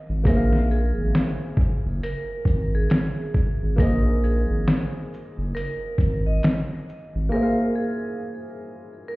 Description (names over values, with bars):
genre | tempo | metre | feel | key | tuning
lo-fi hip hop | 68 BPM | 4/4 | swing 62% on 16ths | unclear | A4 = 441 Hz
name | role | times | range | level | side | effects
felt-muted upright piano | accompaniment | 0.0-9.2 s | Bb3 to F5 | -28 LUFS | equal | cassette tape, low-pass filter
saturated sub bass | bass | 0.1-7.3 s | Gb1 to Bb1 | -22 LUFS | equal | none
vibraphone with medium hard mallets | melody | 0.3-9.2 s | Ab4 to Eb5 | -32 LUFS | right 3 dB | low-pass filter, tape echo
dusty soul sampler-style drum kit | drums | 0.3-7.1 s | hi-hat, kick drum, shaker, snare drum | -22 LUFS | equal | overdrive, vintage 12-bit sampler grit
room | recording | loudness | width
light reverb | heard muffled through a wall, stone room reverb, EQ | -20 LUFS | side -21 dB against mid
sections
0.0-9.2 A section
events
drums muted 7.3-9.2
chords
0.0 Bb9sus4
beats
| 0.25 1.14 2.02 2.90 | 3.78 4.66 5.55 6.43 | 7.31 8.19 9.08